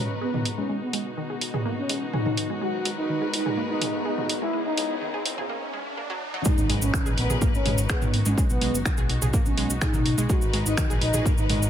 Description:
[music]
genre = melodic techno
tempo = 125 BPM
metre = 4/4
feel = straight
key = G# minor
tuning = A4 = 440 Hz
[part]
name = expressive synth lead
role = melody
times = 0.0-11.7 s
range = B3 to F#4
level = -29 LUFS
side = left 1 dB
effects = lush chorus, sidechain pumping, ping-pong delay
[part]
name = warm studio string section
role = sustained chords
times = 0.0-11.7 s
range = C#3 to B4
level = -34 LUFS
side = left 2 dB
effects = sidechain pumping, low-pass filter
[part]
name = wide unison pluck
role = arpeggios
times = 0.0-11.6 s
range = D#3 to G#4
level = -33 LUFS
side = right 2 dB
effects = sidechain pumping, ping-pong delay
[part]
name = fat analog bass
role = bass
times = 0.0-11.7 s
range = F#1 to C#2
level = -29 LUFS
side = equal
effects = sidechain pumping, high-pass filter
[part]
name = riser and impact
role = sound effects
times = 0.2-8.4 s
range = none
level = -37 LUFS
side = right 1 dB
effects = none
[part]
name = deep dark ambient pad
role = texture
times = 0.1-5.5 s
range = B3 to F#5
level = -38 LUFS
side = equal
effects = chorus, built-in reverb, sidechain pumping
[part]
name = techno drum kit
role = drums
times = 0.3-11.6 s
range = finger snaps, hi-hat, toms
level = -29 LUFS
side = right 1 dB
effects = none
[part]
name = cabasa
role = percussion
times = 6.4-11.7 s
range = none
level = -32 LUFS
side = right 2 dB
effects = none
[part]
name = electronic kick drum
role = drums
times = 6.5-11.4 s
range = none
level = -24 LUFS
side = equal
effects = none
[sound]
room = little or no reverb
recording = high-pass filter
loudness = -22 LUFS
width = side -10 dB against mid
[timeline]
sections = 0.0-6.5 A section; 6.5-11.7 B section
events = build-up 0.0-6.5; filter sweep on synth arpeggio sound 0.0-6.5; filter sweep on string section 0.0-6.5; riser 0.2-6.5; break 5.5-6.5; drop 6.5-11.7; impact 6.5-8.4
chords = 0.0 G#m7; 0.7 B; 2.6 G#m7; 4.5 C#madd9; 6.5 G#m7; 8.4 B; 10.3 G#m7

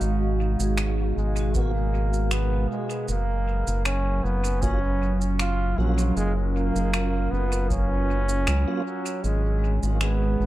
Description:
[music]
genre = ambient dub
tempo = 78 BPM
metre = 4/4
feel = straight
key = unclear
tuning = A4 = 440 Hz
[part]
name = warbly tape-like pad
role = sustained chords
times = 0.0-10.5 s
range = B2 to A#4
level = -30 LUFS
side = right 2 dB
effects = chorus, built-in reverb
[part]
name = vibraphone with medium mallets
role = arpeggios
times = 0.0-3.8, 9.6-10.5 s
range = G#3 to E#5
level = -37 LUFS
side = left 1 dB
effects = vintage 12-bit sampler grit, dub echo
[part]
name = round analog bass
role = bass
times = 0.0-10.5 s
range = F#1 to C#2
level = -24 LUFS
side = equal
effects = none
[part]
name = electronic shaker and finger snaps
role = drums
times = 0.0-10.2 s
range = none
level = -33 LUFS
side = equal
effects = overdrive, studio ambience, dub echo
[part]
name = bright trombone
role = melody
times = 1.2-10.5 s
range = F#3 to E#4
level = -30 LUFS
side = right 1 dB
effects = dub echo
[part]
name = electronic kick drum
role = drums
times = 1.5-7.9 s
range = none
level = -29 LUFS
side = equal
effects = none
[part]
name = mellow tonewheel organ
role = stabs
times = 1.6-8.8 s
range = F#3 to F#4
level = -38 LUFS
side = right 3 dB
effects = none
[sound]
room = light reverb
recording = echo-heavy mix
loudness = -22 LUFS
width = side -15 dB against mid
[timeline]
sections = 0.0-10.5 A section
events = none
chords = 0.0 G#m7; 3.1 F#maj7; 9.2 G#m

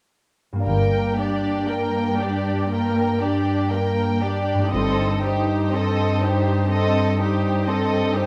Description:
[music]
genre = classical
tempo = 56-64 BPM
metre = 4/4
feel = rubato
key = G minor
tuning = A4 = 440 Hz
[part]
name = concert harp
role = arpeggios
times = 0.5-8.3 s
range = G2 to D5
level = -30 LUFS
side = equal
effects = none
[part]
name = muted chamber violin section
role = second line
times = 0.6-8.3 s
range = G4 to Bb4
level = -28 LUFS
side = equal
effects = none
[part]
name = muted chamber viola section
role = accompaniment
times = 0.6-8.3 s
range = Bb3 to Eb4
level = -28 LUFS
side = equal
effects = none
[part]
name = muted chamber cello section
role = bass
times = 0.6-8.3 s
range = G2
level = -26 LUFS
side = equal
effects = none
[part]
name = muted studio violin section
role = melody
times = 0.7-8.3 s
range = C5 to G5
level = -31 LUFS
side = equal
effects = none
[part]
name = muted studio double bass section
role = bass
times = 0.7-5.7 s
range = G1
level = -30 LUFS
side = equal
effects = none
[sound]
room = wet recital hall reverb, RT60 1.5 s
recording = none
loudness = -21 LUFS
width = mono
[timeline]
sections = 0.6-8.3 A section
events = none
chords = 0.6 Gm; 4.7 Am7b5/G

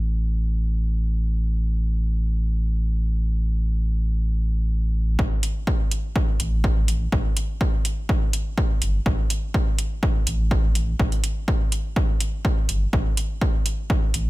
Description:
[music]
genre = dub techno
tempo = 124 BPM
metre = 4/4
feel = straight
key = unclear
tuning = A4 = 440 Hz
[part]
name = warm sub bass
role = bass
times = 0.0-14.3 s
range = G1 to A1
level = -22 LUFS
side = equal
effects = tube saturation, sidechain pumping
[part]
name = electronic kick drum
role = drums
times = 5.2-14.0 s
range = none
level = -21 LUFS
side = equal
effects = small room ambience
[part]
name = electronic hi-hat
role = drums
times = 5.4-14.2 s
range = none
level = -28 LUFS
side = right 1 dB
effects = small room ambience
[sound]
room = digital ambience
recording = none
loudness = -20 LUFS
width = side -19 dB against mid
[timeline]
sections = 0.0-5.2 A section; 5.2-14.3 B section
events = none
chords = none

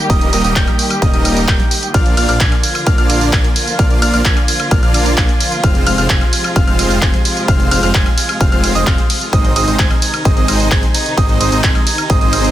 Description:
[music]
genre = EDM, festival progressive house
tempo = 130 BPM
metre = 4/4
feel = straight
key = unclear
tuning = A4 = 440 Hz
[part]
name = muted studio string section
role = sustained chords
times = 0.0-12.5 s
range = C3 to G4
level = -22 LUFS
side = equal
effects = sidechain pumping
[part]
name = bright grand piano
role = arpeggios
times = 0.1-12.5 s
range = Eb6 to Ab6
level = -21 LUFS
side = right 1 dB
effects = sidechain pumping, dub echo
[part]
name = dense compressed supersaw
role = riff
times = 0.1-12.5 s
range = G3 to Ab5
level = -19 LUFS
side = right 1 dB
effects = sidechain pumping, dub echo
[part]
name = wide detuned saw bass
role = bass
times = 0.1-12.5 s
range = Eb1 to Bb1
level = -19 LUFS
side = equal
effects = chorus, sidechain pumping
[part]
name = big-room dance drum kit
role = drums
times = 0.1-12.5 s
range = handclaps, hi-hat, ride cymbal, tambourine, woodblock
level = -19 LUFS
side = right 1 dB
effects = none
[part]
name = electronic kick drum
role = drums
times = 0.1-12.2 s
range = none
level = -14 LUFS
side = equal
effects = none
[sound]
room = little or no reverb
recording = dense, heavily limited modern master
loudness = -11 LUFS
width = side -13 dB against mid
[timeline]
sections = 0.0-12.5 A section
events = none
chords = 0.0 Eb; 1.9 Bb; 5.6 Fm; 9.3 Ab

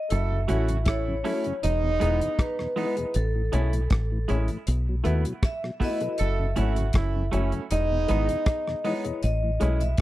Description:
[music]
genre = roots reggae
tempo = 79 BPM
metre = 4/4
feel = straight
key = F# dorian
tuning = A4 = 440 Hz
[part]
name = vibraphone with hard mallets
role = melody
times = 0.0-10.0 s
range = A4 to E5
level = -30 LUFS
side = left 1 dB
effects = tape echo
[part]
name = warm horn section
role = second line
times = 0.1-8.8 s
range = F#3 to A4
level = -31 LUFS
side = right 6 dB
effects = tape echo
[part]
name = deep dub fingered electric bass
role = bass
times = 0.1-10.0 s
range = E1 to D#2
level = -25 LUFS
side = equal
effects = none
[part]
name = damped 70s drum kit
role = drums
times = 0.1-10.0 s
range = hi-hat, kick drum, rim click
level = -26 LUFS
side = equal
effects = none
[part]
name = mellow tonewheel organ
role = accompaniment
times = 0.3-9.9 s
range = E2 to E4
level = -33 LUFS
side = left 2 dB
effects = chorus vibrato, slow rotary speaker
[part]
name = semi-hollow electric guitar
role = accompaniment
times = 0.5-9.8 s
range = G#3 to E4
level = -34 LUFS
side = right 5 dB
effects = spring reverb, tape echo
[part]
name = dark upright piano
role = stabs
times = 0.5-9.8 s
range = E4 to D#5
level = -33 LUFS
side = left 5 dB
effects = none
[sound]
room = little or no reverb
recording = dry, close 1970s-style studio recording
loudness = -23 LUFS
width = side -15 dB against mid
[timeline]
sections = 0.0-10.0 A section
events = none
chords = 0.1 F#m7; 1.6 Emaj7; 3.1 Amaj7; 4.7 B7sus4; 6.2 F#m7; 7.7 Emaj7; 9.2 Amaj7

